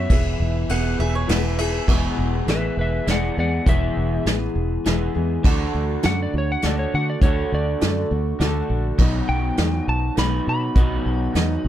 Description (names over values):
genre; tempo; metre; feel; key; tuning
folk rock and heartland rock; 101 BPM; 3/4; straight; E major; A4 = 440 Hz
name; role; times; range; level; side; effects
electric slide guitar; melody; 0.0-11.7 s; B4 to B5; -27 LUFS; left 1 dB; slapback echo
picked steel-string acoustic guitar; accompaniment; 0.0-11.7 s; E2 to C#5; -29 LUFS; left 5 dB; none
electric guitar through a small old amp; riff; 0.0-11.7 s; B2 to C#5; -27 LUFS; right 2 dB; spring reverb
fingered electric bass; bass; 0.0-11.7 s; E1 to D3; -23 LUFS; equal; none
clear baby grand piano; accompaniment; 0.1-11.7 s; E4 to F#5; -36 LUFS; right 5 dB; none
soft brush drum kit; drums; 0.1-11.5 s; crash cymbal, hi-hat, kick drum, ride cymbal, snare drum; -21 LUFS; equal; none
mandolin; second line; 0.7-1.9 s; C#5 to F#5; -29 LUFS; right 3 dB; none
room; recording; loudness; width
little or no reverb; dark, warm production; -19 LUFS; side -12 dB against mid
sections
0.0-1.9 A section; 1.9-11.7 B section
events
electric slide guitar solo 1.9-11.7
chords
0.1 E; 5.4 D; 9.0 B